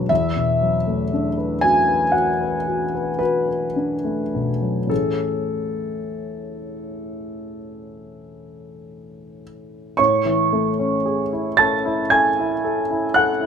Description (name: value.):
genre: classical, impressionist solo piano.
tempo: 34-40 BPM (dotted quarters).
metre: 9/8.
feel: rubato.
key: A major.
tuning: A4 = 437 Hz.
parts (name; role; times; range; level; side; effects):
warm concert grand piano; solo; 0.0-13.5 s; E2 to A6; -18 LUFS; equal; none.
room: light reverb.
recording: minimal, uncompressed stereo recording.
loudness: -18 LUFS.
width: side -7 dB against mid.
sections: 0.0-10.0 A section; 10.0-13.5 A section.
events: none.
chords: 0.1 E9sus4; 4.9 Amaj7.